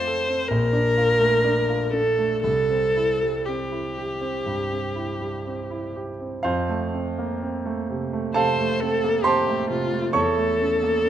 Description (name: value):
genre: classical, romantic duo for viola and grand piano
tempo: 58-68 BPM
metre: 4/4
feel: rubato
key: F major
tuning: A4 = 442 Hz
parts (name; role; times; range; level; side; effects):
- rich viola; melody; 0.0-11.1 s; F4 to C5; -22 LUFS; left 1 dB; none
- warm grand piano; accompaniment; 0.0-11.1 s; Bb1 to C#6; -24 LUFS; right 2 dB; none
room: light reverb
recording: close, detailed microphones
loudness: -21 LUFS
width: side -10 dB against mid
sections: 0.0-6.5 A section; 6.5-11.1 B section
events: none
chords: 0.0 F; 0.5 Bbmaj7; 2.4 C; 6.5 F; 10.1 A/E